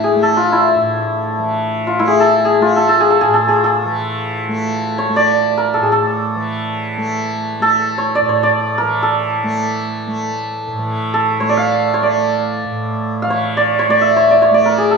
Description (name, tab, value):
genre	indian classical, Hindustani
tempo	free time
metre	none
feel	none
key	unclear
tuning	A4 = 440 Hz
part	santur	melody	0.0-15.0 s	D4 to F5	-14 LUFS	equal	none
part	tanpura	drone	0.0-15.0 s	A2 to A3	-22 LUFS	right 2 dB	none
room	wet scoring stage reverb, RT60 1.6 s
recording	small room ambience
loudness	-13 LUFS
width	side -4 dB against mid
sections	0.0-10.8 A section; 10.8-15.0 A section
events	none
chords	none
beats	free time